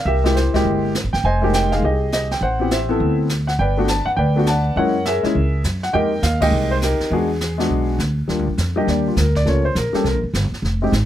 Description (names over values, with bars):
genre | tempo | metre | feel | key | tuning
jazz piano trio | 204 BPM | 4/4 | swing 63% on 8ths | unclear | A4 = 441 Hz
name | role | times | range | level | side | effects
warm grand piano | melody | 0.0-10.9 s | G3 to A5 | -19 LUFS | left 1 dB | none
upright bass | bass | 0.0-11.1 s | F1 to Gb2 | -20 LUFS | equal | none
jazz brush drum kit | drums | 0.1-11.1 s | brushed snare drum, hi-hat, kick drum, ride cymbal, snare drum | -27 LUFS | right 1 dB | none
room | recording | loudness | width
light reverb | none | -16 LUFS | side -12 dB against mid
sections
0.0-8.3 A section; 8.3-11.1 B section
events
band accent 6.4; grand piano solo 8.3-11.1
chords
0.1 C7b13; 1.2 Fm11; 2.4 Am7; 3.0 Dsus2; 3.6 Gmaj9; 4.8 Gb9; 5.9 Fm11; 7.1 E9; 8.3 Ebmaj9; 9.5 Gm7b5; 10.0 C5